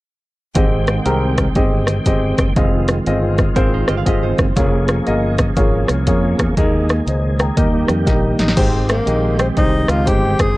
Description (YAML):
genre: uptempo gospel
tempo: 120 BPM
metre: 4/4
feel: swing 64% on 8ths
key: Ab major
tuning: A4 = 441 Hz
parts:
  - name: bright tonewheel organ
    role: sustained chords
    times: 0.5-10.6 s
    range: Eb3 to G5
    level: -22 LUFS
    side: right 2 dB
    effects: slow rotary speaker, chorus vibrato
  - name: warm baby grand piano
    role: accompaniment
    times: 0.6-10.4 s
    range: Ab2 to Bb5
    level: -20 LUFS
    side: left 1 dB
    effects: none
  - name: modern bright fingered electric bass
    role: bass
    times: 0.6-10.5 s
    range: F1 to F2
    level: -19 LUFS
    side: equal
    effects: none
  - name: punchy analog drum machine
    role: drums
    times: 0.6-10.5 s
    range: crash cymbal, hi-hat, kick drum, rim click, snare drum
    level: -18 LUFS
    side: equal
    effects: none
  - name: direct-recorded clean electric guitar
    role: second line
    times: 3.6-4.6 s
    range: Eb4 to F5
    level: -26 LUFS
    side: right 9 dB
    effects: none
  - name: breathy tenor saxophone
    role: melody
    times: 8.4-10.6 s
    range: Bb3 to Ab4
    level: -20 LUFS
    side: left 1 dB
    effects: none
room: little or no reverb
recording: dry, close 1970s-style studio recording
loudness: -14 LUFS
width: side -19 dB against mid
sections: 0.6-8.6 A section; 8.6-10.6 B section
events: drum fill 8.1-8.6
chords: 0.6 Abmaj7; 2.6 Fm7; 4.6 Bbm7/F; 6.6 Ebsus4; 7.6 Eb; 8.6 Abmaj7